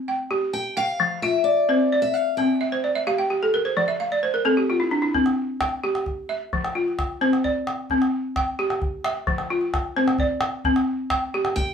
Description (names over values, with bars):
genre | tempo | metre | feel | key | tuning
west african traditional, West African string and xylophone music | 87 BPM (dotted quarters) | 12/8 | straight | C mixolydian | A4 = 439 Hz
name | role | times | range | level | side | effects
balafon | arpeggios | 0.0-11.7 s | F3 to G5 | -22 LUFS | equal | none
picked steel-string acoustic guitar | melody | 0.5-4.2, 11.6-11.7 s | D5 to G5 | -23 LUFS | left 4 dB | none
calabash | percussion | 5.1-11.7 s | none | -27 LUFS | equal | none
room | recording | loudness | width
wet studio reverb, RT60 0.5 s | small room ambience | -20 LUFS | side -7 dB against mid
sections
0.0-11.7 A section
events
balafon fill 2.6-5.1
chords
0.0 N.C.; 1.0 F5; 2.4 C5; 3.8 F5; 5.1 C; 6.5 F5; 7.9 C; 9.3 F5; 10.7 C5